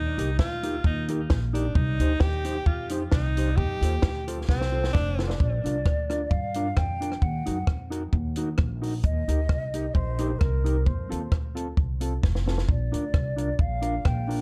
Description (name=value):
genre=ska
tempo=132 BPM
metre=4/4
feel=straight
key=Bb major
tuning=A4 = 440 Hz
part: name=clear tenor saxophone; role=melody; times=0.0-5.4 s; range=C4 to G4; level=-34 LUFS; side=equal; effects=tape echo
part: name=upright bass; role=bass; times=0.0-14.4 s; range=F1 to G2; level=-30 LUFS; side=equal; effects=none
part: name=mellow electric guitar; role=accompaniment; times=0.2-14.4 s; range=C4 to C5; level=-35 LUFS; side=equal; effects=none
part: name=compact cocktail drum kit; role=drums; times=0.2-14.4 s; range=hi-hat, kick drum, rim click, snare drum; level=-28 LUFS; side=equal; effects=none
part: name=mellow hollow concert flute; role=melody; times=5.4-14.4 s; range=Bb4 to G5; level=-35 LUFS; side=equal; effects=tape echo
room=light reverb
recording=dark, warm production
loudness=-26 LUFS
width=mono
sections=0.0-5.4 A section; 5.4-14.4 B section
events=tenor saxophone solo 0.0-5.4; drum fill 4.5-5.4, 12.2-12.7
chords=0.0 Eb; 1.8 Cm; 3.6 F; 5.4 Bb; 7.2 Ebm; 9.0 Eb; 10.9 F; 12.7 Bb